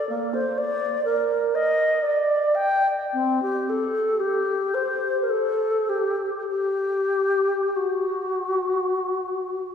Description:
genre	classical, free, expressive piece for unaccompanied alto flute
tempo	35-64 BPM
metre	3/4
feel	rubato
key	G minor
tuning	A4 = 438 Hz
part	wooden-headed alto flute	solo	0.0-9.7 s	Bb3 to G5	-21 LUFS	left 1 dB	none
room	wet church reverb, RT60 2.9 s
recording	small room reverb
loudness	-21 LUFS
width	side -7 dB against mid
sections	0.0-9.7 A section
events	none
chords	none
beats	| 0.10 1.06 2.04 | 3.13 4.22 5.31 | 6.51 7.76 8.99

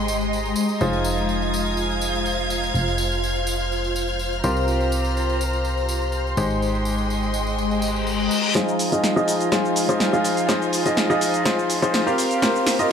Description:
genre	piano house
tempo	124 BPM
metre	4/4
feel	straight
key	F minor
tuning	A4 = 440 Hz
part	warm studio violin section	sustained chords	0.0-12.9 s	Ab3 to Ab6	-29 LUFS	equal	none
part	clear baby grand piano	riff	0.0-12.9 s	F3 to F5	-23 LUFS	left 1 dB	low-pass filter, tape echo
part	solid FM bass	bass	0.0-8.3 s	F1 to C2	-26 LUFS	right 1 dB	none
part	ethereal airy pad	texture	0.0-12.9 s	Ab3 to C6	-26 LUFS	left 1 dB	ensemble chorus, built-in reverb
part	tambourine	percussion	0.1-8.5 s	none	-34 LUFS	equal	none
part	reverse cymbal and riser	sound effects	7.8-12.9 s	none	-30 LUFS	left 5 dB	none
part	punchy analog drum machine	drums	8.6-12.9 s	cabasa, hi-hat, snare drum	-23 LUFS	right 1 dB	none
room	light reverb, digital ambience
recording	none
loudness	-19 LUFS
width	side -7 dB against mid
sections	0.0-8.6 A section; 8.6-12.9 B section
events	reverse cymbal 7.8-8.6; build-up 8.6-12.9; drum fill 8.6-12.9; filter sweep on grand piano 8.6-12.9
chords	0.0 Abmaj7; 0.8 Fm7; 4.4 C7sus4; 6.4 Abmaj7; 8.6 Fm7; 12.2 C7sus4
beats	0.33 | 0.81 1.29 1.78 2.26 | 2.75 3.23 3.71 4.20 | 4.68 5.17 5.65 6.13 | 6.62 7.10 7.58 8.07 | 8.55 9.04 9.52 10.00 | 10.49 10.97 11.46 11.94 | 12.42 12.91

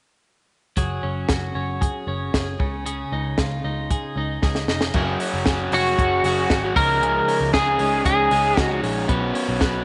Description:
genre	jangly indie pop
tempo	115 BPM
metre	4/4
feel	straight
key	unclear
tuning	A4 = 439 Hz
part	twelve-string electric guitar	arpeggios	0.8-9.8 s	C#3 to B4	-30 LUFS	equal	spring reverb
part	vintage muted picked electric bass	bass	0.8-9.8 s	E#1 to C#2	-30 LUFS	equal	none
part	compact cocktail drum kit	drums	0.8-9.7 s	crash cymbal, hi-hat, kick drum, snare drum	-26 LUFS	equal	none
part	crunchy overdriven guitar	accompaniment	4.9-9.8 s	C#3 to B4	-27 LUFS	equal	none
part	lightly driven lead guitar	melody	5.7-8.8 s	F#4 to A#4	-22 LUFS	equal	slapback echo
room	light reverb, small room ambience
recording	nothing above 10.7 kHz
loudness	-22 LUFS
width	mono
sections	0.8-4.9 A section; 4.9-9.8 B section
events	drum fill 4.4-4.9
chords	0.8 F#sus2; 2.6 C#add9; 4.9 F#sus2; 6.8 C#add9; 9.1 Bsus2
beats	| 0.77 1.29 1.81 2.34 | 2.86 3.38 3.90 4.42 | 4.94 5.46 5.98 6.50 | 7.02 7.54 8.06 8.58 | 9.10 9.62

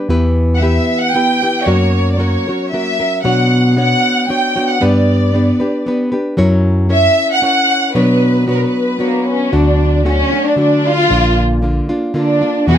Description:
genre	mexican folk, mariachi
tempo	115 BPM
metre	3/4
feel	straight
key	B harmonic minor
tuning	A4 = 440 Hz
part	nylon-string guitar	accompaniment	0.0-12.8 s	E2 to C#5	-15 LUFS	equal	none
part	bell-like tine electric piano	bass	0.1-12.8 s	Bb1 to B2	-15 LUFS	equal	phaser
part	dark studio violin section	melody	0.6-12.8 s	A#3 to G5	-15 LUFS	equal	none
room	moderate studio reverb, RT60 0.6 s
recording	none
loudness	-11 LUFS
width	side -10 dB against mid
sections	0.0-9.5 A section; 9.5-12.8 B section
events	none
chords	0.1 Em; 1.7 F#; 3.2 Bmadd9; 4.8 G; 6.4 F#7; 8.0 Bmadd9; 9.5 D; 11.1 Bb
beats	| 0.09 0.61 1.14 | 1.66 2.19 2.71 | 3.24 3.77 4.29 | 4.82 5.34 5.86 | 6.38 6.91 7.43 | 7.95 8.48 9.00 | 9.53 10.05 10.58 | 11.10 11.62 12.15 | 12.67

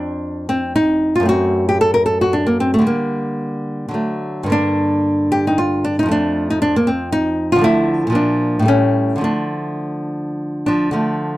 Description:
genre	classical, baroque-style dance for nylon-string guitar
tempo	103-118 BPM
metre	3/4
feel	rubato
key	D minor from 7.6 s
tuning	A4 = 445 Hz
part	nylon-string guitar	solo	0.0-11.4 s	F2 to Bb4	-15 LUFS	equal	none
room	little or no reverb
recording	dry, close 1970s-style studio recording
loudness	-15 LUFS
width	side -16 dB against mid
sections	0.0-11.0 A section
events	none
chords	0.0 F5; 1.3 F#dim; 2.9 Gm/D; 4.0 D; 4.5 Gm; 6.1 F; 7.6 Dm; 8.2 Bb; 8.7 A7; 9.2 Dm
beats	0.25 0.76 | 1.28 1.80 2.32 | 2.86 3.41 3.96 | 4.52 5.05 5.58 | 6.10 6.62 7.13 | 7.65 8.16 8.69 | 9.25 9.82 10.39 | 10.96

